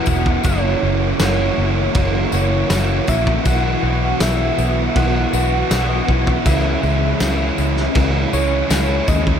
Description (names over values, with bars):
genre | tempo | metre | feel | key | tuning
rock, shoegaze and dream pop | 80 BPM | 4/4 | straight | unclear | A4 = 440 Hz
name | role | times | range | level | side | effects
soft struck synth lead | melody | 0.0-9.4 s | C#5 to F#5 | -24 LUFS | equal | chorus, analog delay
overdriven electric guitar | riff | 0.0-9.4 s | F#2 to F#4 | -22 LUFS | right 12 dB | reverse reverb
raw garage guitar | riff | 0.0-9.4 s | F#2 to F#4 | -23 LUFS | left 11 dB | overdrive, ensemble chorus
vintage muted fingered electric bass | bass | 0.1-9.4 s | E1 to D#2 | -20 LUFS | equal | none
loose indie drum kit | drums | 0.1-9.4 s | crash cymbal, kick drum, snare drum | -21 LUFS | equal | none
tambourine | percussion | 0.1-9.3 s | none | -32 LUFS | left 19 dB | none
direct-recorded clean electric guitar | arpeggios | 3.5-9.4 s | E3 to G#4 | -28 LUFS | left 12 dB | wide subtle chorus, analog delay
room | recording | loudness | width
light reverb, studio ambience | none | -15 LUFS | side -8 dB against mid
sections
0.0-9.4 A section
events
none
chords
0.4 F#7; 3.5 Bsus4; 6.5 C#m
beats
| 0.45 1.20 1.95 2.71 | 3.46 4.21 4.96 5.71 | 6.46 7.21 7.96 8.71